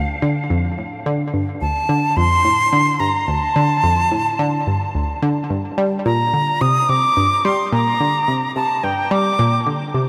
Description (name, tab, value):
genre	ambient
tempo	108 BPM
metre	4/4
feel	straight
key	G minor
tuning	A4 = 440 Hz
part	bright silver concert flute	melody	0.0-9.7 s	F5 to Eb6	-21 LUFS	equal	delay
part	analog pluck	riff	0.0-10.1 s	D2 to G3	-22 LUFS	equal	chorus, delay
room	wet huge ambient reverb, RT60 7.9 s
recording	none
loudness	-18 LUFS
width	mono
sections	0.0-10.1 A section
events	none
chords	0.0 Dm; 5.5 Gm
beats	0.50 | 1.06 1.61 2.17 2.73 | 3.28 3.84 4.39 4.95 | 5.50 6.06 6.61 7.17 | 7.72 8.28 8.84 9.39 | 9.95